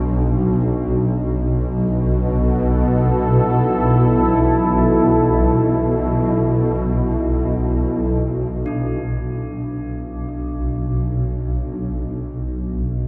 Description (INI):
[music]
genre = dark ambient drone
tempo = free time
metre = none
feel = none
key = B minor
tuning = A4 = 440 Hz
[part]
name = swarming drone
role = drone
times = 0.0-13.1 s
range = B1 to B2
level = -21 LUFS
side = equal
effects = built-in reverb
[part]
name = quartz singing bowl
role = texture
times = 0.0-13.1 s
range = D4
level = -35 LUFS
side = equal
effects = none
[part]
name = deep dark ambient pad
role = sustained chords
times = 1.8-8.7 s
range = B3 to A4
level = -22 LUFS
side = equal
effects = chorus, built-in reverb
[part]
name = dark detuned synth bell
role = arpeggios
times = 8.7-13.1 s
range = D4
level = -45 LUFS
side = equal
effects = none
[sound]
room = wet huge ambient reverb, RT60 8.2 s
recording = dark, warm production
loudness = -19 LUFS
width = mono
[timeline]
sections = 0.0-8.7 A section; 8.7-13.1 B section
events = filter sweep on synth drone 8.7-13.1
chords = 0.0 Bm7; 8.7 Bm